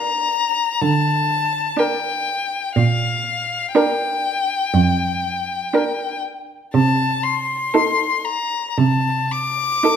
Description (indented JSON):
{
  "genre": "classical, slow romantic movement for string quartet",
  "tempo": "60 BPM",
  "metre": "4/4",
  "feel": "rubato",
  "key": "Bb major",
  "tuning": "A4 = 444 Hz",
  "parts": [
    { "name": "clear violin", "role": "melody", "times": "0.0-10.0 s", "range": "F5 to D6", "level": "-20 LUFS", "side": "left 5 dB", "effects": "none" },
    { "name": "clear violin", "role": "second line", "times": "0.0-10.0 s", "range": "A4 to Bb4", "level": "-22 LUFS", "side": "equal", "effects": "none" },
    { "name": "rich viola", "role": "accompaniment", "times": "0.0-10.0 s", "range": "D4 to Eb4", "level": "-23 LUFS", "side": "right 5 dB", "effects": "none" },
    { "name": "rich cello", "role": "bass", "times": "0.8-9.7 s", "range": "F2 to D3", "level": "-19 LUFS", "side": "right 4 dB", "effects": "none" }
  ],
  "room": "wet recital hall reverb, RT60 1.3 s",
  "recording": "none",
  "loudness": "-17 LUFS",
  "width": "side -8 dB against mid",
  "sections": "0.0-10.0 A section",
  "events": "none",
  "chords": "0.0 Bb/D; 2.8 Bb; 6.7 Adim/C"
}